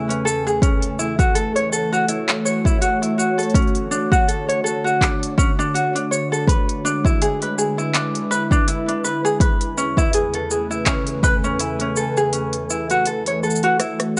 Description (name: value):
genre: folktronica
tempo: 82 BPM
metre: 4/4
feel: swing 56% on 16ths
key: D lydian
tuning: A4 = 438 Hz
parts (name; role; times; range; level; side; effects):
- warbly tape-like pad; sustained chords; 0.0-14.2 s; E2 to G#5; -26 LUFS; equal; chorus, built-in reverb
- ukulele; arpeggios; 0.0-14.2 s; C#4 to C#5; -23 LUFS; equal; delay
- organic electronic drum kit; drums; 0.1-14.2 s; cabasa, handclaps, hi-hat, rim click; -26 LUFS; equal; overdrive
- electronic kick drum; drums; 0.6-11.4 s; none; -21 LUFS; equal; overdrive
room: light reverb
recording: nothing above 10.8 kHz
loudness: -20 LUFS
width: mono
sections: 0.0-14.2 A section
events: kick drops out 12.3-14.2; drum fill 13.8-14.2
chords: 0.0 Amaj9/E; 0.6 F#m7; 3.5 Dmaj7; 6.5 E7; 9.4 Amaj9/E; 12.3 F#m7